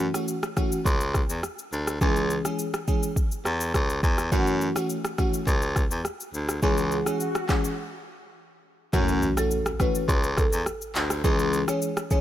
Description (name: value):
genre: afrobeats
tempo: 104 BPM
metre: 4/4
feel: straight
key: F# minor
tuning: A4 = 441 Hz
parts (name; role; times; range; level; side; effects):
- FM electric piano with soft pad layer; accompaniment; 0.0-12.2 s; E3 to G#4; -27 LUFS; equal; chorus
- warm baritone saxophone; bass; 0.0-11.6 s; C#2 to F#2; -26 LUFS; equal; none
- afro-pop drum kit; drums; 0.1-12.2 s; handclaps, kick drum, rim click, shaker; -27 LUFS; equal; none
- swell and impact; sound effects; 6.6-11.2 s; none; -34 LUFS; equal; none
- marimba with medium mallets; melody; 9.4-12.2 s; A4 to C#5; -30 LUFS; equal; ping-pong delay
room: little or no reverb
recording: none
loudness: -23 LUFS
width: side -12 dB against mid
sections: 0.0-8.9 A section; 8.9-12.2 B section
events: swell 6.6-8.9; break 7.8-8.9; impact 8.9-11.2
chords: 0.0 F#m7; 2.0 C#m; 4.3 F#m7; 6.6 C#m; 8.9 F#m7; 11.2 C#m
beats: 0.28 0.86 1.44 | 2.01 2.59 3.17 3.74 | 4.32 4.90 5.47 6.05 | 6.63 7.20 7.78 8.36 | 8.94 9.51 10.09 10.67 | 11.24 11.82